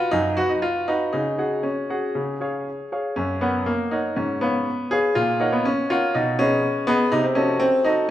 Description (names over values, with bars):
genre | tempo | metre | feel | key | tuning
classical-period piano sonatina | 121 BPM | 4/4 | straight | F# major | A4 = 440 Hz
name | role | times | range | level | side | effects
bright grand piano | solo | 0.0-8.1 s | F#2 to F#5 | -20 LUFS | equal | none
room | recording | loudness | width
wet recital hall reverb, RT60 1.7 s | minimal, uncompressed stereo recording | -20 LUFS | side -12 dB against mid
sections
0.0-8.1 A section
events
none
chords
0.0 B5; 1.1 C#sus4; 2.2 C#; 3.2 F#; 4.2 C#7/G#; 5.2 F#/A#; 6.1 G#m/B; 7.1 Cdim7